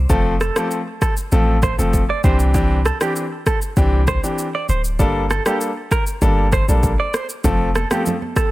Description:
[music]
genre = afrobeats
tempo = 98 BPM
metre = 4/4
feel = straight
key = F major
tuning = A4 = 439 Hz
[part]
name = warm 808-style bass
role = bass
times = 0.0-7.8 s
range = D1 to C2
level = -18 LUFS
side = equal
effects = none
[part]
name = clear concert grand piano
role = accompaniment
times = 0.1-8.1 s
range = E3 to A4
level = -21 LUFS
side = left 1 dB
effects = none
[part]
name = afro-pop drum kit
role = drums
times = 0.1-8.5 s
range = kick drum, rim click, shaker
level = -20 LUFS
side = equal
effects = overdrive
[part]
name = direct-recorded clean electric guitar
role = riff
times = 0.4-8.5 s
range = G4 to D5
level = -25 LUFS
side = right 4 dB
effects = wide subtle chorus, tape echo
[part]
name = congas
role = percussion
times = 7.4-8.4 s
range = none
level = -25 LUFS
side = right 4 dB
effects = none
[sound]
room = digital ambience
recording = none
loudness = -16 LUFS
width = side -17 dB against mid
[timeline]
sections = 0.0-8.5 A section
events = none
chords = 0.0 F; 2.2 Cadd9; 5.0 Gmadd9; 7.4 F

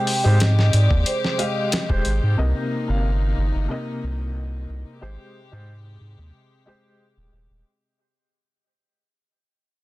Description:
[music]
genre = trip hop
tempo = 91 BPM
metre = 4/4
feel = straight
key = unclear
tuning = A4 = 440 Hz
[part]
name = vibraphone with medium mallets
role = melody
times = 0.0-2.0 s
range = C5 to G5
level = -28 LUFS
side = right 1 dB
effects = vintage 12-bit sampler grit, tape echo
[part]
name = felt-muted upright piano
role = accompaniment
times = 0.0-7.6 s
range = C3 to F5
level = -29 LUFS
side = left 1 dB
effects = tremolo, low-pass filter, tape echo
[part]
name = warm chamber string section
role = sustained chords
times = 0.0-7.6 s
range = C3 to G4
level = -31 LUFS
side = left 2 dB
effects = none
[part]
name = dusty soul sampler-style drum kit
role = drums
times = 0.1-2.2 s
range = hi-hat, kick drum, snare drum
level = -23 LUFS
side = equal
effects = studio ambience
[part]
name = soft dub sub bass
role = bass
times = 0.3-7.6 s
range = Eb1 to Ab2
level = -20 LUFS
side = equal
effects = none
[sound]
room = small room ambience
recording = dense, heavily limited modern master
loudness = -19 LUFS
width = side -18 dB against mid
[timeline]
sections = 0.0-7.7 A section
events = fade-out 0.0-7.7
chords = 0.0 Abmaj7; 2.4 Cm7; 5.0 Abmaj7

